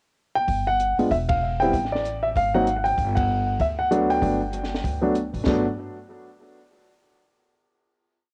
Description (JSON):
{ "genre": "jazz piano trio", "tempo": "192 BPM", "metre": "4/4", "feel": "swing 61% on 8ths", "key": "G major", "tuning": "A4 = 441 Hz", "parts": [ { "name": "warm concert grand piano", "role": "melody", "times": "0.4-5.6 s", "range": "Gb3 to G5", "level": "-24 LUFS", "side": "equal", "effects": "cassette tape, tape echo" }, { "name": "upright bass", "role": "bass", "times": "0.5-5.6 s", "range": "E1 to D2", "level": "-31 LUFS", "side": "equal", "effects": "none" }, { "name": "compact cocktail drum kit", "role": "drums", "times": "0.5-5.6 s", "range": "crash cymbal, hi-hat, kick drum, ride cymbal, snare drum", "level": "-32 LUFS", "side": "equal", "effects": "none" } ], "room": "light reverb", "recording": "home recording on cassette", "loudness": "-23 LUFS", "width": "mono", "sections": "0.0-0.5 pickup bar; 0.5-5.5 A section; 5.5-6.7 final chord", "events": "band accent 1.3, 3.1", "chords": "0.5 Gmaj7(no3); 1.1 E5; 1.7 A7sus4; 2.4 Ab7(no3); 3.0 Gmaj7; 5.5 N.C." }